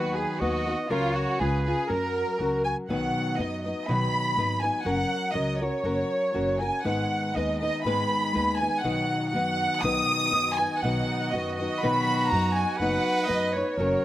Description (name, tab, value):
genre	mexican folk, mariachi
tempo	121 BPM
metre	2/4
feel	swing 53% on 8ths, rubato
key	B major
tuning	A4 = 440 Hz
part	warm studio violin section	melody	0.0-14.0 s	E#4 to D#6	-26 LUFS	equal	none
part	warm trumpet	second line	0.0-2.8, 10.8-14.0 s	D#4 to D#5	-32 LUFS	right 3 dB	none
part	nylon-string guitar	accompaniment	0.0-14.0 s	G#2 to B4	-28 LUFS	left 2 dB	none
part	upright bass	bass	0.0-13.9 s	F#1 to F#2	-32 LUFS	right 1 dB	none
part	warm symphonic violin section	sustained chords	6.9-14.0 s	G#3 to D#5	-40 LUFS	right 1 dB	none
room	little or no reverb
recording	recorded outdoors, with no room sound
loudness	-24 LUFS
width	side -14 dB against mid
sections	0.0-2.9 A section; 2.9-14.0 B section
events	none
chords	0.0 B/D#; 0.9 F#/C#; 1.4 C#; 1.9 F#; 2.9 B; 4.9 F#; 6.9 G#m; 8.8 B; 12.8 B/F#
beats	0.41 | 0.90 1.39 | 1.89 2.39 | 2.89 3.39 | 3.89 4.37 | 4.86 5.35 | 5.85 6.36 | 6.86 7.36 | 7.86 8.35 | 8.84 9.33 | 9.82 10.32 | 10.82 11.32 | 11.82 12.31 | 12.80 13.28 | 13.78